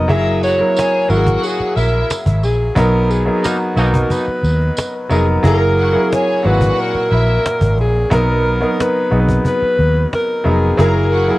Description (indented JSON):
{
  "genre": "lush 1970s-style soul",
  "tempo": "90 BPM",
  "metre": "4/4",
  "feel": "straight",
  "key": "B major",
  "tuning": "A4 = 440 Hz",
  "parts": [
    { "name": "breathy alto saxophone", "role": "melody", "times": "0.0-11.4 s", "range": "F#4 to E5", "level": "-18 LUFS", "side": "equal", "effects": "cassette tape" },
    { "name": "clear baby grand piano", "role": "accompaniment", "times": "0.0-11.4 s", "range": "A#2 to B4", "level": "-18 LUFS", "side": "equal", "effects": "cassette tape" },
    { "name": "vintage muted fingered electric bass", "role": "bass", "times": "0.0-11.3 s", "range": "E#1 to D#2", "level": "-16 LUFS", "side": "equal", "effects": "none" },
    { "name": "warm studio string section", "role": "second line", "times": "0.1-11.4 s", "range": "E4 to A#5", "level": "-24 LUFS", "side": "left 1 dB", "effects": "cassette tape, tape echo" },
    { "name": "cajon", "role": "drums", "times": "0.1-11.4 s", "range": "none", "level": "-19 LUFS", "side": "equal", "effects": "cassette tape" },
    { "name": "tambourine", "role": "percussion", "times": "0.1-5.3 s", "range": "none", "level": "-32 LUFS", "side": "right 4 dB", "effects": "none" },
    { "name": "clear horn section", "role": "stabs", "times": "3.4-4.2 s", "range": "B2 to D#4", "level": "-22 LUFS", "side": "right 1 dB", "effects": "cassette tape" }
  ],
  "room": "little or no reverb",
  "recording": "home recording on cassette",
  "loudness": "-13 LUFS",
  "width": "side -18 dB against mid",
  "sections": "0.0-5.4 A section; 5.4-11.4 A section",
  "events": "band accent 2.8-5.4",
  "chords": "0.1 F#9; 2.8 Bmaj7; 5.4 F#9; 8.1 Bmaj7; 10.8 F#9",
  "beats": "| 0.09 0.76 1.43 2.10 | 2.77 3.44 4.11 4.77 | 5.44 6.11 6.78 7.45 | 8.12 8.78 9.45 10.12 | 10.79"
}